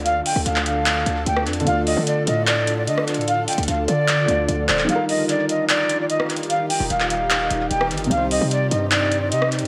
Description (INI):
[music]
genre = hip hop, trap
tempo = 149 BPM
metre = 4/4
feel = half-time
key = D phrygian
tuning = A4 = 442 Hz
[part]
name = dark baby grand piano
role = accompaniment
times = 0.0-9.7 s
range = C3 to D5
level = -29 LUFS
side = equal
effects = low-pass filter
[part]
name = granular cloud pad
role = sustained chords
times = 0.0-9.7 s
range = C3 to A4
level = -31 LUFS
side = equal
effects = built-in reverb
[part]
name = hard-hitting 808-style bass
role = bass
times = 0.0-9.7 s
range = Eb1 to D3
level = -27 LUFS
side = equal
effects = none
[part]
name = downlifter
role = sound effects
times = 0.0-1.7 s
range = none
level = barely audible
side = none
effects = none
[part]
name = silver concert flute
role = melody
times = 0.1-9.5 s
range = D5 to G5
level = -25 LUFS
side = equal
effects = low-pass filter, tape echo
[part]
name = booming analog drum machine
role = drums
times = 0.1-9.7 s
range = handclaps, hi-hat, rim click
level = -26 LUFS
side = equal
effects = tape echo
[sound]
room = light reverb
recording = echo-heavy mix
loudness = -20 LUFS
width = mono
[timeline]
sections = 0.0-9.7 A section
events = kick muted 4.9-5.7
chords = 0.0 Dm; 4.9 Ebadd9; 8.1 Cm